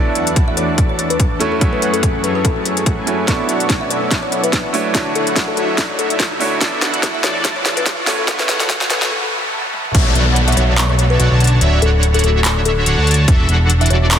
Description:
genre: future bass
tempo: 144 BPM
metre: 4/4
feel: swing 55% on 16ths, half-time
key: F# minor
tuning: A4 = 439 Hz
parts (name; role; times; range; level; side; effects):
- bright concert grand piano; accompaniment; 0.0-10.0 s; A3 to C#6; -23 LUFS; right 4 dB; sidechain pumping, dub echo
- airy breathy pad; sustained chords; 0.0-9.1 s; D2 to E4; -30 LUFS; left 1 dB; chorus, sidechain pumping
- soft supersaw; riff; 0.0-14.2 s; D3 to A5; -20 LUFS; equal; phaser, cassette tape, sidechain pumping, low-pass filter
- riser and downlifter; sound effects; 1.3-13.3 s; none; -27 LUFS; equal; none
- trap drum kit; drums; 0.2-14.2 s; crash cymbal, handclaps, hi-hat, snare drum, toms; -19 LUFS; left 1 dB; none
- electronic kick drum; drums; 0.4-10.0, 13.3-13.4 s; none; -16 LUFS; equal; none
- kalimba; melody; 0.5-14.2 s; A4 to E5; -24 LUFS; left 5 dB; sidechain pumping, tape echo
- fat analog bass; bass; 9.9-14.2 s; D1 to D2; -14 LUFS; equal; sidechain pumping
room: moderate shimmer reverb, RT60 6.1 s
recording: dense, heavily limited modern master, high-pass filter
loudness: -13 LUFS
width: side -9 dB against mid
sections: 0.0-9.9 A section; 9.9-14.2 B section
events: build-up 0.0-9.9; filter sweep on supersaw synth 0.0-9.9; filter sweep 0.0-9.9; drum fill 3.3-9.1, 9.7; break 9.1-9.9; drop 9.9-14.2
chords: 0.0 E7sus4; 1.4 F#m7; 3.3 Bm11; 4.7 Dmaj9; 6.6 E7sus4; 8.1 F#m7; 9.9 Bm11; 11.4 Dmaj9; 13.3 E7sus4

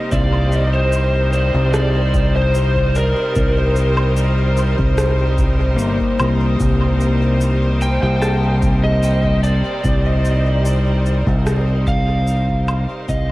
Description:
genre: ambient dub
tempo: 74 BPM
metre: 4/4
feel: straight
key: C dorian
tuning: A4 = 441 Hz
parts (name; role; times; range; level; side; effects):
- overdriven slide guitar; melody; 0.0-13.3 s; Bb4 to G5; -23 LUFS; equal; cassette tape, tape echo
- clear studio string section; sustained chords; 0.0-13.3 s; C3 to C5; -23 LUFS; equal; cassette tape
- pedal steel guitar; arpeggios; 0.0-12.0 s; Bb3 to A5; -26 LUFS; left 4 dB; cassette tape, tape echo
- fingered electric bass; bass; 0.1-13.3 s; G1 to C2; -16 LUFS; equal; none
- electronic kick drum; drums; 0.1-13.3 s; none; -22 LUFS; equal; cassette tape
- electronic shaker, rim click and woodblock; drums; 0.1-13.3 s; none; -27 LUFS; equal; overdrive, cassette tape, dub echo
room: light reverb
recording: home recording on cassette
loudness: -14 LUFS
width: side -18 dB against mid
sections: 0.0-13.3 A section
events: fade-out 10.9-13.3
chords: 0.0 Cm7

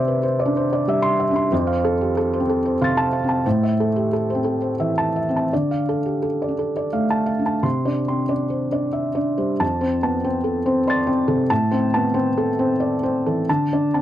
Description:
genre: neoclassical minimalist piano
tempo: 82-98 BPM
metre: 3/4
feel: rubato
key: C major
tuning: A4 = 438 Hz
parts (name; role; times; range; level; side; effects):
- felt-muted upright piano; solo; 0.0-14.0 s; F2 to A6; -18 LUFS; equal; none
room: little or no reverb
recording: dry, close 1970s-style studio recording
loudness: -18 LUFS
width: side -12 dB against mid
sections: 0.0-7.6 A section; 7.6-14.0 B section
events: none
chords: 0.0 Cadd9; 1.5 F; 3.5 Am; 5.5 Dm; 7.6 Cadd9; 9.6 F; 11.5 Am; 13.5 D5

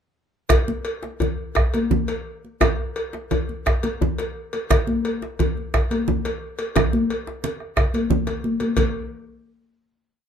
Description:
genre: west african traditional, West African drum ensemble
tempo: 116 BPM (dotted quarters)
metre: 12/8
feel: straight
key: none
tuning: none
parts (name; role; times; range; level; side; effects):
- bombo; percussion; 0.5-8.9 s; none; -22 LUFS; right 1 dB; none
- congas; percussion; 0.5-8.9 s; none; -24 LUFS; right 1 dB; none
- cowbell; percussion; 0.5-8.9 s; none; -28 LUFS; equal; none
- djembe; percussion; 0.5-8.9 s; none; -26 LUFS; left 3 dB; none
room: moderate small room reverb, RT60 0.5 s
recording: minimal, uncompressed stereo recording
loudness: -20 LUFS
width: side -8 dB against mid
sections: 0.5-8.8 A section; 8.8-10.3 final hit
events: speeding up 0.5-10.3; drum fill 8.3-8.8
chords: none

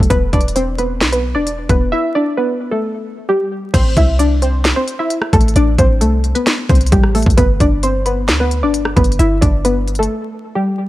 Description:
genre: hip hop, trap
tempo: 132 BPM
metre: 4/4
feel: half-time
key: A minor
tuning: A4 = 439 Hz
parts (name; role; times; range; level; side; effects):
- warbly dusty pluck; melody; 0.0-10.9 s; G3 to E5; -16 LUFS; equal; chorus, low-pass filter, tape echo
- clean 808-style bass; bass; 0.0-10.1 s; E1 to D2; -16 LUFS; equal; none
- trap drum kit; drums; 0.0-10.1 s; crash cymbal, hi-hat, kick drum, rim click, snare drum; -15 LUFS; equal; none
room: digital ambience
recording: vinyl crackle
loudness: -12 LUFS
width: side -16 dB against mid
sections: 0.0-3.7 A section; 3.7-10.9 B section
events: break 1.9-3.7, 10.1-10.9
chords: 0.1 Em; 3.7 Am; 7.4 G

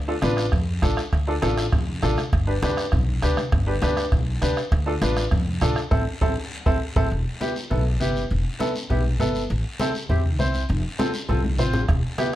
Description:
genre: latin, cumbia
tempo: 201 BPM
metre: 4/4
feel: straight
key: unclear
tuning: A4 = 440 Hz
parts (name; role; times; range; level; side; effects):
- upright bass; bass; 0.0-12.0 s; E1 to F2; -24 LUFS; equal; none
- bright upright piano; accompaniment; 0.1-12.3 s; B3 to C5; -25 LUFS; equal; none
- bombo; percussion; 0.2-7.0, 11.9-12.3 s; none; -24 LUFS; right 1 dB; none
- congas; percussion; 0.2-12.3 s; none; -28 LUFS; left 1 dB; none
- guiro; percussion; 0.2-12.3 s; none; -36 LUFS; left 2 dB; none
room: light reverb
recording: dark, warm production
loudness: -20 LUFS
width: side -13 dB against mid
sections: 0.0-7.1 A section; 7.1-12.4 B section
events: drum fill 5.9-7.1, 11.4-11.9; band accent 5.9-7.1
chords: 0.0 Dm; 2.3 G; 4.7 Dm; 5.9 Am; 7.1 Em; 9.5 Am; 10.7 F

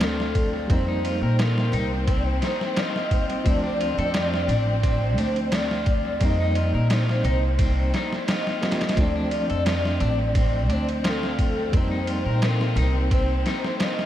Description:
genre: trip hop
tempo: 87 BPM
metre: 4/4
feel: swing 53% on 16ths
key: unclear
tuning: A4 = 441 Hz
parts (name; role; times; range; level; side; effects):
- pure breathy sine lead; melody; 0.0-14.1 s; A4 to Eb5; -28 LUFS; equal; ensemble chorus, dub echo
- bright tine electric piano; accompaniment; 0.0-14.1 s; F3 to F4; -30 LUFS; equal; tremolo, dub echo
- rich studio string section; sustained chords; 0.0-14.1 s; C4; -33 LUFS; left 3 dB; vintage 12-bit sampler grit
- electric guitar at the edge of break-up; arpeggios; 0.0-14.1 s; C4 to Bb4; -34 LUFS; left 4 dB; dub echo
- upright bass; bass; 0.0-13.4 s; A1 to Bb2; -24 LUFS; equal; none
- trip hop sampler-style drum kit; drums; 0.0-14.1 s; kick drum, ride cymbal, snare drum; -26 LUFS; equal; dub echo
room: light reverb, digital ambience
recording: echo-heavy mix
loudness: -20 LUFS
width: side -12 dB against mid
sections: 0.0-14.1 A section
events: none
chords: 0.0 Dm7; 0.7 F7sus4; 3.5 Dm7; 6.2 F7sus4; 9.0 Dm7; 11.7 F7sus4

